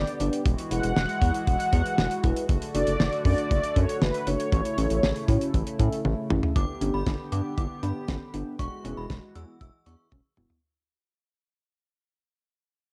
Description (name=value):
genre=synth-pop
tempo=118 BPM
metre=4/4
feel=straight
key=E mixolydian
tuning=A4 = 440 Hz
part: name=mellow synth brass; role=melody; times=0.0-6.0 s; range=B4 to F#5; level=-31 LUFS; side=equal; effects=chorus, cassette tape, analog delay
part: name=chorused pulse-width pad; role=sustained chords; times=0.0-10.6 s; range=C#3 to G4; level=-37 LUFS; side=equal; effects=low-pass filter, cassette tape
part: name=round analog bass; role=bass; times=0.0-10.5 s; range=E1 to A2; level=-30 LUFS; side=equal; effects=none
part: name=damped 70s drum kit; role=drums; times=0.1-10.6 s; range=hi-hat, kick drum, snare drum, toms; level=-29 LUFS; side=equal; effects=cassette tape
part: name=bell-like tine electric piano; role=accompaniment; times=0.2-10.6 s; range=B3 to B4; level=-35 LUFS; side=equal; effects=phaser, low-pass filter, cassette tape
part: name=synth chime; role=second line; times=6.6-9.9 s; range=B5 to E6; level=-42 LUFS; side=equal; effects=ensemble chorus, tremolo, cassette tape, analog delay
part: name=unison pluck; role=arpeggios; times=6.6-10.5 s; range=B3 to E4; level=-42 LUFS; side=equal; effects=low-pass filter, cassette tape, analog delay
room=light reverb, small room ambience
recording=home recording on cassette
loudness=-26 LUFS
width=mono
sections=0.0-6.6 A section; 6.6-10.6 B section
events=drum fill 6.0-6.6, 10.1-10.6; fade-out 6.6-10.6; filter sweep 6.6-10.6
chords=0.5 Eadd9; 2.5 D/F#; 4.5 A; 6.6 G; 8.6 Eadd9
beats=| 0.46 0.96 1.47 1.98 | 2.49 3.00 3.51 4.02 | 4.52 5.03 5.54 6.05 | 6.56 7.07 7.58 8.08 | 8.59 9.10 9.61 10.12